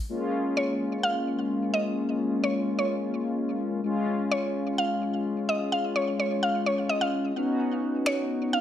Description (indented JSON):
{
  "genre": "dance-pop",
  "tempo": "128 BPM",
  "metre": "4/4",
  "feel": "straight",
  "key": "unclear",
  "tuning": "A4 = 440 Hz",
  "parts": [
    { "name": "mellow synth brass", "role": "accompaniment", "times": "0.1-8.6 s", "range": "Ab3 to Gb4", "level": "-27 LUFS", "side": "left 2 dB", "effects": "chorus" },
    { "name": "mallet-like synth pluck", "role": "melody", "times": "0.6-8.6 s", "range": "Db5 to F5", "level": "-28 LUFS", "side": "right 1 dB", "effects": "chorus, tape echo" },
    { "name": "electronic finger snaps", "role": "drums", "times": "8.1-8.2 s", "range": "none", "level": "-32 LUFS", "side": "equal", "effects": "overdrive" }
  ],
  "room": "moderate digital room reverb, RT60 0.9 s, digital ambience",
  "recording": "dry, gritty hardware recording",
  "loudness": "-25 LUFS",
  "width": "side -10 dB against mid",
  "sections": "0.1-8.6 A section",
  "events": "none",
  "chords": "0.1 Bbm7; 3.8 Db; 7.4 Cbadd9",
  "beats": "| 0.10 0.56 1.03 1.50 | 1.97 2.44 2.91 3.38 | 3.85 4.31 4.78 5.25 | 5.72 6.19 6.66 7.13 | 7.59 8.06 8.53"
}